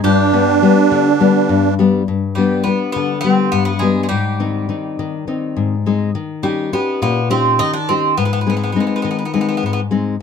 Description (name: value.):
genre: greek folk, Greek bouzouki band.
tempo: 206 BPM (eighths).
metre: 7/8.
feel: straight.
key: unclear.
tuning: A4 = 437 Hz.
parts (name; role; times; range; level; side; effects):
Greek bouzouki; melody; 0.0-9.8 s; G3 to G4; -21 LUFS; right 1 dB; none.
musette accordion; second line; 0.0-1.7 s; D4; -15 LUFS; right 12 dB; none.
nylon-string guitar; accompaniment; 0.0-10.2 s; G2 to G4; -16 LUFS; left 5 dB; none.
room: moderate small room reverb, RT60 0.5 s.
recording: close, detailed microphones.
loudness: -14 LUFS.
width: side -6 dB against mid.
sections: 0.0-2.1 A section; 2.1-10.2 B section.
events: none.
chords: 0.0 G; 4.1 Ab; 6.2 Eb7; 8.2 Ab.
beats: | 0.03 0.33 0.62 0.91 1.20 1.49 1.78 | 2.07 2.37 2.66 2.95 3.24 3.53 3.82 | 4.11 4.40 4.70 4.99 5.28 5.57 5.86 | 6.15 6.44 6.73 7.02 7.31 7.60 7.89 | 8.18 8.47 8.76 9.05 9.34 9.63 9.92.